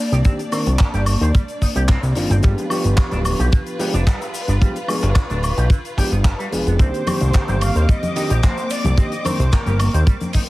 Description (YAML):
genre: nu-disco, nu disco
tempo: 110 BPM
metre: 4/4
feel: straight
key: C minor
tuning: A4 = 439 Hz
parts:
  - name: rich studio string section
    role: sustained chords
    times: 0.0-10.5 s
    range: Bb3 to D6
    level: -28 LUFS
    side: left 1 dB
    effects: sidechain pumping
  - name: electric guitar with an envelope filter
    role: riff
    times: 0.1-10.4 s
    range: D3 to C5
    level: -32 LUFS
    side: right 2 dB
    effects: wide subtle chorus, tape echo
  - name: fat analog bass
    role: bass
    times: 0.1-10.0 s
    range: D1 to Eb2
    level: -17 LUFS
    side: equal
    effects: none
  - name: damped 70s drum kit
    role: drums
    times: 0.1-10.5 s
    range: handclaps, hi-hat, ride cymbal, shaker, woodblock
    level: -27 LUFS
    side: left 1 dB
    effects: small room ambience
  - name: overdriven reed electric piano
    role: accompaniment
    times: 0.2-9.4 s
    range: Eb3 to Bb4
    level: -25 LUFS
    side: equal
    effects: sidechain pumping, tape echo
  - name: kick drum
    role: drums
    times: 0.3-10.5 s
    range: none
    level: -15 LUFS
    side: equal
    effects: small room ambience
  - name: wide unison lead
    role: melody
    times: 6.8-10.1 s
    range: Bb4 to F5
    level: -27 LUFS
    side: right 1 dB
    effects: lush chorus, tape echo
  - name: congas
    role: percussion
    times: 7.1-10.3 s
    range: none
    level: -27 LUFS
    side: left 2 dB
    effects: none
room: light reverb, studio ambience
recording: heavily compressed radio sound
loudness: -16 LUFS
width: side -19 dB against mid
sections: 0.0-10.5 A section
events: none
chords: 0.0 Cm9; 2.4 G7b9; 6.8 Cm9